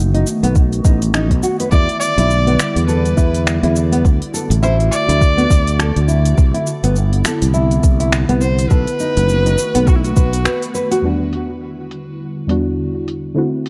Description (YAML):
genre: organic downtempo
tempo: 103 BPM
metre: 4/4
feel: swing 58% on 16ths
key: E minor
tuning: A4 = 440 Hz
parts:
  - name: warbly tape-like pad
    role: sustained chords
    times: 0.0-13.7 s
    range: C3 to F#4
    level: -26 LUFS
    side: equal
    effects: chorus, built-in reverb, phaser, sidechain pumping
  - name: nylon-string guitar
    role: arpeggios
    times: 0.0-11.0 s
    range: B3 to B4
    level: -23 LUFS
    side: equal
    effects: tape echo
  - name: sustaining fretless electric bass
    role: bass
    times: 0.0-10.5 s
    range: F#1 to E2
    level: -18 LUFS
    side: equal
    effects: sidechain pumping
  - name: organic electronic drum kit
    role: drums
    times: 0.1-13.7 s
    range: finger snaps, hi-hat, shaker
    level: -26 LUFS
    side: equal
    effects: low-pass filter on perc, low-pass filter on hats, low-pass filter on snare
  - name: electronic kick drum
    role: drums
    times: 0.6-10.3 s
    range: none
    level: -15 LUFS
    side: equal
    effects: none
  - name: rich kamancheh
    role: melody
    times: 1.7-10.8 s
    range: E4 to D5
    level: -24 LUFS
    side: equal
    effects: digital delay
  - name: deep mellow chord stab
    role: accompaniment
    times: 11.0-13.7 s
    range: E2 to F#4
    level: -21 LUFS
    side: equal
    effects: chorus, sidechain pumping
room: light reverb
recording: dark, warm production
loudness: -15 LUFS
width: mono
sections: 0.0-11.0 A section; 11.0-13.7 B section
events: break 10.5-11.0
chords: 0.0 B7; 1.7 Em7; 4.0 D; 6.4 Cmaj9; 8.7 B7; 11.0 Em7